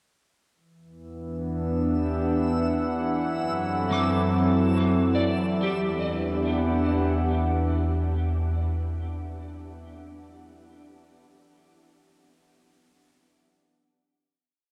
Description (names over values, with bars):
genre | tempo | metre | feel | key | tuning
ambient | free time | none | none | E minor | A4 = 440 Hz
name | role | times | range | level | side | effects
warbly tape-like pad | sustained chords | 1.1-8.9 s | E3 to F#5 | -29 LUFS | equal | chorus, built-in reverb, shimmer reverb
deep rumbling drone | bass | 1.1-8.7 s | E2 to F#2 | -31 LUFS | equal | built-in reverb
backwards swelling texture | texture | 1.8-5.6 s | E6 | -42 LUFS | equal | built-in reverb, shimmer reverb
analog drone | drone | 0.6-8.7 s | E3 to E4 | -37 LUFS | equal | chorus
electric guitar at the edge of break-up | arpeggios | 3.9-8.7 s | F#3 to D6 | -31 LUFS | equal | ensemble chorus, diffuse ambient delay, shimmer reverb
room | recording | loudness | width
wet huge ambient reverb, RT60 8.1 s | dark, warm production | -25 LUFS | mono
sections
0.6-5.6 A section; 5.6-8.1 final chord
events
fade-in on synth texture 0.6-5.6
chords
0.6 Em7; 3.1 F#m7b5; 5.6 Em7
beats
free time